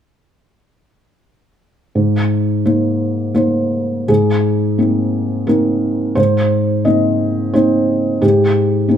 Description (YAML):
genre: neoclassical minimalist piano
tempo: 87 BPM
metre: 3/4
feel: rubato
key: Ab major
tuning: A4 = 445 Hz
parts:
  - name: felt-muted upright piano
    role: solo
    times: 2.0-9.0 s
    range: Ab2 to Eb5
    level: -13 LUFS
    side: equal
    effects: none
room: light reverb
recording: band playing live in one room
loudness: -13 LUFS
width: side -9 dB against mid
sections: 2.0-4.1 A section; 4.1-9.0 B section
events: none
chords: 2.0 Abadd9